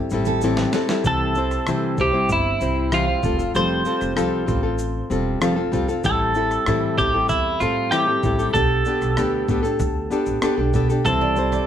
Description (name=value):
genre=acoustic pop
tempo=96 BPM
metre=4/4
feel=straight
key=C major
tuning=A4 = 440 Hz
part: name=nylon-string guitar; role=accompaniment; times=0.0-11.7 s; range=A2 to C5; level=-22 LUFS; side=left 2 dB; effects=none
part: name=upright bass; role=bass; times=0.1-11.6 s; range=E1 to C3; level=-26 LUFS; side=equal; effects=none
part: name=dusty soul sampler-style drum kit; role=drums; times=0.1-11.7 s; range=kick drum, rim click, shaker, snare drum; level=-27 LUFS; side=right 1 dB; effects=none
part: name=picked steel-string acoustic guitar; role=arpeggios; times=0.3-0.9, 11.2-11.7 s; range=A4 to D5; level=-28 LUFS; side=right 4 dB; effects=none
part: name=twelve-string electric guitar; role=melody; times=1.1-11.7 s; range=E4 to C5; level=-22 LUFS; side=right 1 dB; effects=none
room=moderate studio reverb, RT60 0.8 s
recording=heard from further back in the room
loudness=-18 LUFS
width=side -9 dB against mid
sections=0.0-1.0 A section; 1.0-11.7 B section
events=drum fill 0.0-1.0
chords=0.0 Am7; 1.0 C; 3.2 Fadd9; 6.0 Am7; 8.5 Gadd9/B; 11.1 C